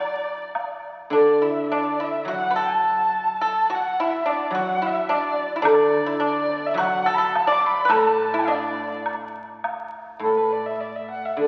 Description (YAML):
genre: chinese traditional, Chinese chamber ensemble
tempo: 105 BPM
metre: 4/4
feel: rubato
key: D gong mode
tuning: A4 = 440 Hz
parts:
  - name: dark erhu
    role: melody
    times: 0.0-11.5 s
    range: A4 to D6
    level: -27 LUFS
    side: equal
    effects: none
  - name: pipa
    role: second line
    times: 0.0-9.0 s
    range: D4 to D5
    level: -27 LUFS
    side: equal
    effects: none
  - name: guzheng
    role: accompaniment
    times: 0.0-11.5 s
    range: A2 to F#3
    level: -25 LUFS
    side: equal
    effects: none
  - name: woodblock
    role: percussion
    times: 0.6-0.7, 5.7-9.8 s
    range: none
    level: -32 LUFS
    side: equal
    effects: none
room: wet concert hall reverb, RT60 2.5 s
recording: very old 78 rpm record, vinyl crackle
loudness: -22 LUFS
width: mono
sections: 0.0-1.1 A section; 1.1-10.2 B section; 10.2-11.5 A section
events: none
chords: none